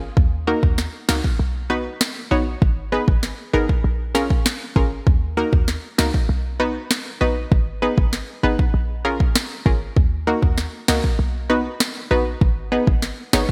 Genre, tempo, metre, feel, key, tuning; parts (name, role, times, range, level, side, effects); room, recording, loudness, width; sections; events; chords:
dancehall; 98 BPM; 4/4; straight; Eb minor; A4 = 441 Hz
short 808-style bass; bass; 0.0-13.5 s; Ab1 to Eb2; -25 LUFS; equal
afro-pop drum kit; drums; 0.2-13.5 s; kick drum, snare drum; -21 LUFS; equal; gated reverb
analog pluck; accompaniment; 0.5-13.5 s; Bb3 to Db5; -25 LUFS; equal; chorus, sidechain pumping
light reverb, digital ambience; bright 1980s-style digital production; -20 LUFS; mono
0.0-13.5 A section
0.2 Ebm; 1.4 B; 2.6 Abm; 3.8 Bbm7; 5.1 Ebm; 6.3 B; 7.5 Abm; 8.7 Bbm7; 10.0 Ebm; 11.2 B; 12.4 Abm